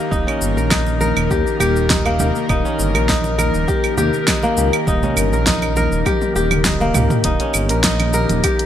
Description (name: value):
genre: organic downtempo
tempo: 101 BPM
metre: 4/4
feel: straight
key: Eb major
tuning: A4 = 440 Hz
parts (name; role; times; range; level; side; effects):
- airy breathy pad; sustained chords; 0.0-8.7 s; Eb3 to Bb4; -24 LUFS; left 1 dB; chorus, sidechain pumping
- kora; arpeggios; 0.0-8.7 s; Bb3 to Bb4; -20 LUFS; left 1 dB; ping-pong delay
- quartz singing bowl; texture; 0.0-7.3 s; none; barely audible; none; none
- smooth synth bass; bass; 0.1-8.4 s; Eb1 to Eb2; -20 LUFS; equal; tube saturation, sidechain pumping
- deep house drum kit; drums; 0.1-8.7 s; claves, hi-hat, shaker, snare drum, toms; -20 LUFS; right 1 dB; none
- electronic kick drum; drums; 0.1-8.6 s; none; -23 LUFS; equal; none
- congas; percussion; 0.7-8.4 s; none; -27 LUFS; right 4 dB; none
room: moderate plate reverb, RT60 2.1 s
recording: bright 1980s-style digital production, faint mains hum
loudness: -15 LUFS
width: side -10 dB against mid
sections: 0.0-7.2 A section; 7.2-8.7 B section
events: drum fill 6.1-7.2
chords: 0.0 Eb7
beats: | 0.12 0.71 1.31 1.90 | 2.50 3.09 3.68 4.28 | 4.87 5.47 6.06 6.65 | 7.25 7.84 8.44